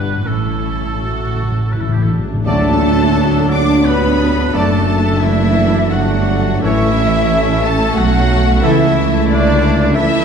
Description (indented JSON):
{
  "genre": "classical, slow romantic movement for symphony orchestra",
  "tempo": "79-93 BPM",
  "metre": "3/4",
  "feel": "rubato",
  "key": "D major",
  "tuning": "A4 = 440 Hz",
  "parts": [
    { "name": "rich studio violin section", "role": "melody", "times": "0.0-10.2 s", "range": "D5 to D6", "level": "-23 LUFS", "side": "left 2 dB", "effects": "none" },
    { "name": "clear oboe", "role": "second line", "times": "0.0-10.2 s", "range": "D4 to D5", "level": "-25 LUFS", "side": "right 3 dB", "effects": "none" },
    { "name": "rich studio violin section", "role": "second line", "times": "0.0-10.2 s", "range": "D4 to D5", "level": "-25 LUFS", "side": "left 4 dB", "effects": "none" },
    { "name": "rich studio viola section", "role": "accompaniment", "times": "0.0-10.2 s", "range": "F#3 to G4", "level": "-21 LUFS", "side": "right 4 dB", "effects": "none" },
    { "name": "concert harp", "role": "arpeggios", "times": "0.0-10.2 s", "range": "F#2 to E6", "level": "-22 LUFS", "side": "left 7 dB", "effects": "none" },
    { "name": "clear studio cello section", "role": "bass", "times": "0.0-10.2 s", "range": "G2 to D4", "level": "-22 LUFS", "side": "right 3 dB", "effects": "none" },
    { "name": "rich symphonic double bass section", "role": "bass", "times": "0.0-10.2 s", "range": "F#1 to D2", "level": "-18 LUFS", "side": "right 2 dB", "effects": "none" },
    { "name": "timpani", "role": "percussion", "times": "0.3-2.4 s", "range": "A2", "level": "-20 LUFS", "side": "left 2 dB", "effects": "none" },
    { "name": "mellow hollow silver concert flute", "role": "second line", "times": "2.5-10.2 s", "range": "D5 to D6", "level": "-23 LUFS", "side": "left 1 dB", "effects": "none" },
    { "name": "warm clarinet", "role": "second line", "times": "2.5-10.2 s", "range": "C#4 to E4", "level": "-26 LUFS", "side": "left 4 dB", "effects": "none" },
    { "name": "dark bassoon", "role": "accompaniment", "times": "2.5-10.2 s", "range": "F#3 to A3", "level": "-25 LUFS", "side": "equal", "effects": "none" },
    { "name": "clear trombone section", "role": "sustained chords", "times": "2.5-8.9 s", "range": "E3 to A3", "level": "-25 LUFS", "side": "right 4 dB", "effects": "none" },
    { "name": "dark French horn section", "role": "sustained chords", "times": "2.5-8.8 s", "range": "A3 to A4", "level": "-26 LUFS", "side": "left 7 dB", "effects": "none" },
    { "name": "clear trumpet section", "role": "stabs", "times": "2.5-8.9 s", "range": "A4 to D5", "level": "-25 LUFS", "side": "equal", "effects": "none" },
    { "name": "mellow tuba", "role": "bass", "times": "2.5-10.2 s", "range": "F#1 to D2", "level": "-22 LUFS", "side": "right 4 dB", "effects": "none" },
    { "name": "tam-tam", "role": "percussion", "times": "2.5-5.2 s", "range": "none", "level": "-26 LUFS", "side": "left 1 dB", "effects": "none" }
  ],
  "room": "moderate scoring stage reverb, RT60 1.7 s",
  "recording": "dark, warm production",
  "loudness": "-12 LUFS",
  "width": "side -6 dB against mid",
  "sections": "0.0-2.5 A section; 2.5-10.2 B section",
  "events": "timpani fill 0.3-2.5; band accent 2.5-3.2",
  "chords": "0.3 A; 2.5 D; 4.5 D/F#; 6.6 A; 8.6 A/C#",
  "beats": "| 0.26 1.01 1.73 | 2.46 3.17 3.86 | 4.54 5.24 5.93 | 6.63 7.31 7.97 | 8.62 9.29 9.95"
}